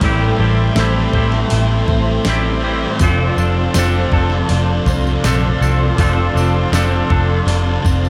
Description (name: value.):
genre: rock, shoegaze and dream pop.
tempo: 80 BPM.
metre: 4/4.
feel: straight.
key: F major.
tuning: A4 = 443 Hz.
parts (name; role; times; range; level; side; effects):
brassy analog pad; sustained chords; 0.0-8.1 s; A4 to C6; -26 LUFS; equal; chorus.
twelve-string electric guitar; arpeggios; 0.0-8.1 s; F3 to A4; -27 LUFS; equal; ensemble chorus, tape echo.
thick fuzz guitar; riff; 0.0-8.1 s; F2 to A3; -22 LUFS; equal; distortion, ensemble chorus.
twangy electric guitar; riff; 0.0-8.1 s; A2 to A4; -24 LUFS; equal; reverse reverb.
vintage muted picked electric bass; bass; 0.0-8.1 s; F1 to C2; -19 LUFS; equal; none.
crisp 8-bit digital drum machine; drums; 0.0-8.0 s; hi-hat, kick drum, snare drum; -23 LUFS; equal; none.
tambourine; percussion; 3.0-8.1 s; none; -35 LUFS; equal; none.
room: light reverb.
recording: none.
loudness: -15 LUFS.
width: mono.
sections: 0.0-8.1 A section.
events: none.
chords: 0.0 Am7; 3.0 F6.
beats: | 0.02 0.77 1.51 2.26 | 3.01 3.75 4.50 5.24 | 5.99 6.73 7.47.